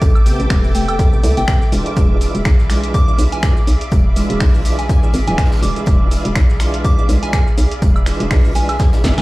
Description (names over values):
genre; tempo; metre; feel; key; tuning
deep house; 123 BPM; 4/4; swing 56% on 16ths; unclear; A4 = 438 Hz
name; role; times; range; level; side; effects
soft string machine; sustained chords; 0.0-9.2 s; G#4 to B5; -29 LUFS; right 1 dB; ensemble chorus, sidechain pumping
soft round pluck; arpeggios; 0.0-9.1 s; G#3 to A5; -28 LUFS; right 2 dB; lush chorus, sidechain pumping, tape echo
hollow knocking FM bass; bass; 0.0-9.2 s; D1 to C2; -17 LUFS; equal; tube saturation, sidechain pumping
crisp fusion drum kit; drums; 0.0-9.2 s; hi-hat, snare drum, tambourine; -36 LUFS; right 2 dB; none
electronic kick drum; drums; 0.0-9.2 s; none; -14 LUFS; equal; none
punchy analog drum machine; drums; 0.0-9.2 s; finger snaps, hi-hat, shaker, snare drum, woodblock; -26 LUFS; equal; none
analog string pad; texture; 0.0-9.2 s; D6; -34 LUFS; right 3 dB; ensemble chorus
tonewheel organ; stabs; 0.3-9.2 s; C3 to A4; -24 LUFS; equal; overdrive, chorus vibrato, slow rotary speaker, sidechain pumping, tape echo
soft synth bell; melody; 0.7-9.2 s; G5 to D6; -25 LUFS; right 1 dB; chorus, phaser, tape echo
room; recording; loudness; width
little or no reverb; played on a big sound system in a bare room, large studio reverb; -12 LUFS; side -20 dB against mid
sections
0.0-9.2 A section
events
drum fill 9.0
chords
0.0 Am9; 1.7 E7b9